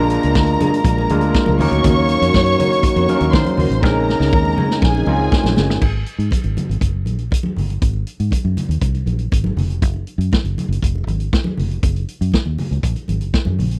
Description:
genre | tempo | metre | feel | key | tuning
disco | 120 BPM | 4/4 | straight | unclear | A4 = 440 Hz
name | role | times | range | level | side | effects
dark studio string section | second line | 0.0-5.8 s | Ab4 to Db6 | -23 LUFS | equal | none
clean electric guitar | accompaniment | 0.0-5.7 s | Db4 to Bb4 | -28 LUFS | equal | none
overdriven tine electric piano | accompaniment | 0.0-5.8 s | F3 to Bb4 | -23 LUFS | equal | lush chorus
mellow French horn section | sustained chords | 0.0-5.8 s | Db3 to Gb4 | -26 LUFS | equal | none
fingered electric bass | bass | 0.0-13.8 s | F1 to Eb3 | -21 LUFS | equal | none
vintage drum kit | drums | 0.1-13.8 s | crash cymbal, hi-hat, kick drum, snare drum | -20 LUFS | equal | none
congas | percussion | 0.3-13.7 s | none | -28 LUFS | equal | none
room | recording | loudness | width
little or no reverb | dry, close 1970s-style studio recording | -17 LUFS | mono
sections
0.0-5.8 A section; 5.8-13.8 B section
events
drum fill 3.8-5.8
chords
0.0 Bb7; 1.6 Ebm7; 3.8 Bbm11; 5.8 Ab7(no3); 9.8 Gbmaj7(no3)

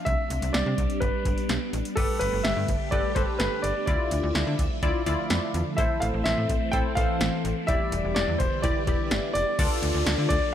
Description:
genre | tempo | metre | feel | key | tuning
synth-pop | 126 BPM | 4/4 | straight | D dorian | A4 = 441 Hz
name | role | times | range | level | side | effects
clear baby grand piano | melody | 0.0-10.5 s | A4 to G5 | -29 LUFS | equal | none
phased string machine | sustained chords | 0.0-10.5 s | D3 to E5 | -32 LUFS | equal | ensemble chorus, phaser
slap-like FM bass | bass | 0.1-10.4 s | E1 to D3 | -29 LUFS | equal | none
electro analog drum machine | drums | 0.1-10.4 s | crash cymbal, hi-hat, kick drum, snare drum | -28 LUFS | equal | none
funky polysynth comp | accompaniment | 2.0-10.4 s | E3 to D5 | -30 LUFS | left 2 dB | chorus
downlifter | sound effects | 9.6-10.5 s | none | -34 LUFS | equal | none
room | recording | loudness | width
light reverb, digital ambience | none | -23 LUFS | side -10 dB against mid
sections
0.0-2.0 A section; 2.0-9.6 B section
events
none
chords
0.1 Csus2; 1.0 Gadd9; 3.9 Dmadd9; 5.8 Am; 7.7 Em7; 9.6 Dm

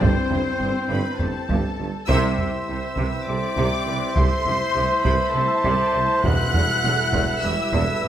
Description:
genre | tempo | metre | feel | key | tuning
cinematic, epic orchestral film score | 202 BPM (eighths) | 7/8 | straight | unclear | A4 = 440 Hz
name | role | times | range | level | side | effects
clear symphonic violin section | melody | 0.0-8.1 s | C5 to F#6 | -28 LUFS | left 2 dB | none
bright concert flute | second line | 0.0-1.8 s | C5 | -35 LUFS | left 4 dB | none
clear symphonic violin section | second line | 0.0-8.1 s | A4 to F#5 | -33 LUFS | left 1 dB | none
warm symphonic viola section | accompaniment | 0.0-8.1 s | C4 to E5 | -34 LUFS | right 2 dB | none
dark French horn section | sustained chords | 0.0-8.1 s | G3 to E4 | -34 LUFS | left 4 dB | none
mellow woodwind section | sustained chords | 0.0-8.1 s | G3 to G5 | -28 LUFS | right 1 dB | none
clear symphonic double bass section | bass | 0.0-8.1 s | E1 to C2 | -30 LUFS | right 4 dB | none
mellow tuba | bass | 0.0-8.1 s | E1 to C2 | -29 LUFS | right 3 dB | none
rich symphonic cello section | bass | 0.0-8.1 s | E2 to C3 | -28 LUFS | right 2 dB | none
taiko ensemble | drums | 0.0-8.1 s | none | -25 LUFS | equal | none
dark trumpet section | stabs | 2.1-8.1 s | B4 to C5 | -25 LUFS | equal | none
timpani | percussion | 6.2-7.1 s | E2 | -29 LUFS | equal | none
room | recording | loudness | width
moderate scoring stage reverb, RT60 1.7 s | none | -19 LUFS | side -10 dB against mid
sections
0.0-2.1 A section; 2.1-8.1 B section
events
band accent 2.1-2.7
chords
0.0 C/G; 2.1 C; 4.2 Am/C; 6.2 Em

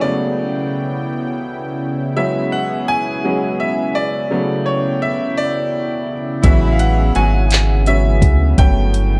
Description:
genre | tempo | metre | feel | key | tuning
slow six-eight R&B | 56 BPM (dotted quarters) | 6/8 | straight | unclear | A4 = 440 Hz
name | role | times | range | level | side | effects
bright baby grand piano | accompaniment | 0.0-9.2 s | C#3 to G#5 | -22 LUFS | equal | none
warm analog pad | sustained chords | 0.0-9.2 s | C#3 to G5 | -26 LUFS | equal | chorus
mellow horn section | stabs | 6.4-7.4 s | E3 to F#4 | -26 LUFS | equal | none
rubbery square bass | bass | 6.4-9.2 s | G1 to D2 | -17 LUFS | equal | none
smooth R&B drum kit | drums | 6.4-9.1 s | handclaps, hi-hat, kick drum | -15 LUFS | equal | vintage 12-bit sampler grit
room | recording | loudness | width
moderate plate reverb, RT60 1.5 s | dreamy mix soaked in reverb | -17 LUFS | mono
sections
0.0-9.2 A section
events
grand piano solo 0.0-9.2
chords
0.0 Gmaj9#11; 2.2 E13/C#; 4.3 Gmaj9#11; 6.4 Amaj13; 8.6 Gmaj9#11

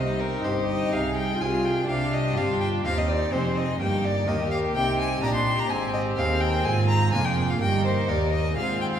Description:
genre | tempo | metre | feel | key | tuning
classical, baroque-style concerto movement with solo episodes | 126 BPM | 4/4 | straight | C minor, Eb major from 3.8 s | A4 = 440 Hz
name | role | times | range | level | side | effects
clear violin | melody | 0.0-9.0 s | Bb4 to C6 | -28 LUFS | left 2 dB | none
rich chamber violin section | melody | 0.0-9.0 s | Eb4 to C5 | -35 LUFS | left 6 dB | none
rich chamber violin section | second line | 0.0-9.0 s | Eb4 to Ab4 | -33 LUFS | left 2 dB | none
harpsichord | accompaniment | 0.0-9.0 s | C2 to C5 | -31 LUFS | left 2 dB | none
rich chamber viola section | accompaniment | 0.0-9.0 s | Bb3 to F4 | -31 LUFS | right 1 dB | none
clear chamber cello section | bass | 0.0-9.0 s | C2 to C3 | -29 LUFS | right 3 dB | none
rich chamber double bass section | bass | 0.0-9.0 s | F1 to Eb2 | -29 LUFS | right 3 dB | none
room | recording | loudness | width
wet recital hall reverb, RT60 1.5 s | heard from further back in the room | -22 LUFS | side -9 dB against mid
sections
0.0-9.0 A section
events
none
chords
0.0 Cm; 0.9 Fm/C; 1.9 Cm; 3.8 Eb/G; 4.8 Cm; 5.7 Ab; 6.7 Bb7/Ab; 7.6 Eb/G

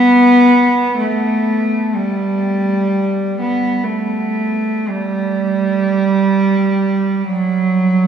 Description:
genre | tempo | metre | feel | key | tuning
classical, free, expressive piece for unaccompanied cello | free time | none | none | G major | A4 = 440 Hz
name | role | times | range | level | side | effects
warm cello | solo | 0.0-8.1 s | F#3 to B3 | -13 LUFS | right 1 dB | none
room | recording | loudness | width
wet cathedral reverb, RT60 5.3 s | studio ambience | -13 LUFS | side -8 dB against mid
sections
0.0-4.9 A section; 4.9-8.1 B section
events
none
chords
none

